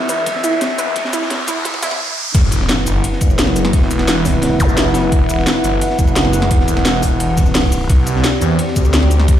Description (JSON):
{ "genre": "dark technical drum and bass", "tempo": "173 BPM", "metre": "4/4", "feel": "straight", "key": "E minor", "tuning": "A4 = 437 Hz", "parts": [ { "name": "dark analog pad", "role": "sustained chords", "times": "0.0-9.4 s", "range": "C4 to F#5", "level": "-20 LUFS", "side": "equal", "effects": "chorus, sidechain pumping" }, { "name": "phased detuned saw bass", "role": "bass", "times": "0.0-9.4 s", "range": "E1 to E2", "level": "-17 LUFS", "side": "equal", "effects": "phaser, tube saturation, sidechain pumping, high-pass filter" }, { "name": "riser, impact and zap", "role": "sound effects", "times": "0.0-4.7 s", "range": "none", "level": "-22 LUFS", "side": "equal", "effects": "none" }, { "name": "analog pluck", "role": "arpeggios", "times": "0.1-1.9 s", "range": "E4 to B4", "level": "-23 LUFS", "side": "right 4 dB", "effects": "chorus, sidechain pumping, tape echo" }, { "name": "crunchy breakbeat drum kit", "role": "drums", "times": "0.1-9.4 s", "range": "hi-hat, ride cymbal, snare drum", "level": "-25 LUFS", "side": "equal", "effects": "high-pass filter on cymbals, studio reverb, high-pass filter on hats, high-pass filter on snare, high-pass filter on room" }, { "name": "drum and bass drum kit", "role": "drums", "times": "0.1-9.4 s", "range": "cabasa, crash cymbal, hi-hat, snare drum", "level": "-20 LUFS", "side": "left 1 dB", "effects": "high-pass filter on hats, studio reverb, high-pass filter on perc, high-pass filter on cymbals, high-pass filter on snare" }, { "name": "electronic kick drum", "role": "drums", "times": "0.3-9.4 s", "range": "none", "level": "-15 LUFS", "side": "equal", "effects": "overdrive, high-pass filter on kick, studio reverb" } ], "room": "light reverb, small room ambience", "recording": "played on a big sound system in a bare room, large studio reverb, high-pass filter", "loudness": "-13 LUFS", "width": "side -11 dB against mid", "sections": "0.0-2.3 A section; 2.3-9.4 B section", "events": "build-up 0.0-2.3; drum fill 0.0-2.0; riser 0.0-2.3; filter sweep on synth arpeggio sound 0.0-2.3; filter sweep 0.0-2.3; drop 2.3-9.4; impact 2.3-3.7", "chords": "0.0 Em; 2.3 E5; 7.9 C5" }